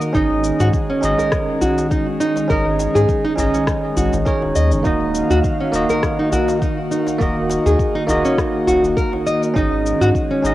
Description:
organic downtempo; 102 BPM; 4/4; swing 55% on 16ths; A4 = 436 Hz
bell-like tine electric piano; accompaniment; 0.0-10.5 s; Bb3 to Eb5; -20 LUFS; right 2 dB; medium stereo tremolo, sidechain pumping, cassette tape, tape echo
airy breathy pad; sustained chords; 0.0-10.5 s; Eb3 to F5; -24 LUFS; equal; chorus, sidechain pumping, cassette tape
electronic cabasa and rim click; drums; 0.0-10.5 s; -29 LUFS; left 2 dB; cassette tape
nylon-string guitar; arpeggios; 0.1-10.4 s; Db4 to Eb5; -20 LUFS; equal; cassette tape, tape echo
round analog bass; bass; 0.1-10.5 s; Eb1 to Ab2; -20 LUFS; left 1 dB
electronic kick drum; drums; 0.1-10.3 s; -22 LUFS; left 1 dB; cassette tape
djembe; percussion; 0.6-10.1 s; -27 LUFS; equal
moderate spring reverb, RT60 2.0 s; home recording on cassette; -15 LUFS; side -15 dB against mid
0.0-10.5 A section
0.1 Absus4; 4.9 Ebm; 9.6 Absus4
| 0.15 0.73 1.32 1.91 | 2.50 3.09 3.68 4.26 | 4.85 5.44 6.03 6.62 | 7.21 7.79 8.38 8.97 | 9.56 10.15

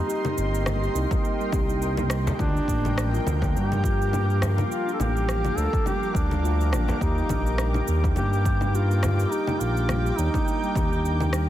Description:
organic downtempo; 104 BPM; 4/4; swing 56% on 16ths; G minor; A4 = 441 Hz
mellow duduk; melody; 0.0-11.3 s; D4 to A4; -30 LUFS; right 1 dB; tape echo
granular cloud pad; sustained chords; 0.0-11.5 s; Bb4 to D6; -32 LUFS; equal; built-in reverb, vintage 12-bit sampler grit, sidechain pumping
steel tongue drum; arpeggios; 0.0-11.5 s; F3 to G4; -30 LUFS; equal; tape echo
electronic shaker, congas and rim click; drums; 0.1-11.5 s; -32 LUFS; left 2 dB; soft clipping on snare
smooth synth bass; bass; 0.4-11.5 s; G1 to G2; -24 LUFS; equal
electronic kick drum; drums; 1.1-10.9 s; -27 LUFS; equal
frame drum; percussion; 2.3-9.2 s; -32 LUFS; left 1 dB
light reverb, digital ambience; dense, heavily limited modern master; -22 LUFS; side -12 dB against mid
0.0-11.5 A section
0.0 Cm7; 2.4 Gm7; 7.0 Ebmaj7
| 0.09 0.66 1.24 1.82 | 2.39 2.97 3.55 4.12 | 4.70 5.28 5.85 6.43 | 7.01 7.58 8.16 8.74 | 9.32 9.89 10.47 11.05

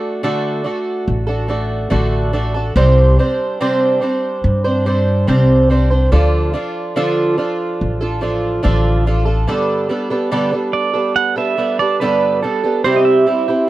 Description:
acoustic folk duo or small band; 71 BPM; 4/4; straight; G major; A4 = 439 Hz
fingerpicked twelve-string acoustic guitar; accompaniment; 0.0-13.7 s; G2 to C5; -16 LUFS; right 1 dB
upright bass; bass; 1.1-9.4 s; A1 to G2; -15 LUFS; equal
pedal steel guitar; second line; 10.7-13.7 s; A4 to F#5; -17 LUFS; right 6 dB
little or no reverb; dry, close 1970s-style studio recording; -14 LUFS; side -15 dB against mid
0.0-9.5 A section; 9.5-13.7 B section
pedal steel guitar solo 9.5-13.7
0.0 D; 2.8 Csus2; 6.1 Dm; 9.5 Gadd9; 12.8 C
0.23 1.07 1.91 | 2.75 3.59 4.43 5.27 | 6.12 6.96 7.80 8.64 | 9.48 10.32 11.16 12.01 | 12.85 13.69

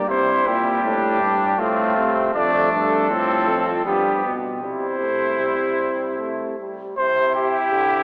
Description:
classical, imitative canzona for brass ensemble; 79 BPM; 3/4; straight; C major; A4 = 441 Hz
mellow trumpet; melody; 0.0-8.0 s; F4 to D5; -24 LUFS; equal
clear trumpet; second line; 0.0-8.0 s; B3 to G4; -28 LUFS; equal
bright trombone; accompaniment; 0.0-8.0 s; C3 to A3; -28 LUFS; equal
dark euphonium; bass; 0.0-6.5 s; F2 to C3; -29 LUFS; equal
wet church reverb, RT60 2.7 s; recorded in a church or concert hall, small speaker sound; -21 LUFS; mono
0.0-7.0 A section; 7.0-8.0 B section
0.1 C; 1.6 F/A; 2.3 Dm/F; 3.9 G; 4.6 C
| 0.09 0.84 1.59 | 2.34 3.10 3.86 | 4.63 5.41 6.19 | 6.97 7.73

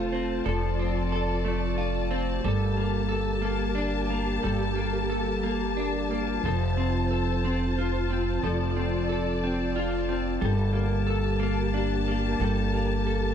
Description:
pop; 60 BPM (dotted quarters); 6/8; straight; F major; A4 = 440 Hz
direct-recorded clean electric guitar; accompaniment; 0.0-13.3 s; F3 to A4; -28 LUFS; equal; double-tracked left and right
dark studio string section; sustained chords; 0.0-13.3 s; Bb3 to A5; -31 LUFS; left 1 dB
upright bass; bass; 0.0-13.3 s; F1 to G1; -29 LUFS; equal
studio ambience; dry, close 1970s-style studio recording; -24 LUFS; side -8 dB against mid
0.0-13.3 A section
0.0 F; 2.4 Gmadd9; 6.4 F; 10.4 Gmadd9
| 0.46 1.45 | 2.44 3.44 | 4.43 5.43 | 6.44 7.44 | 8.44 9.43 | 10.43 11.41 | 12.40

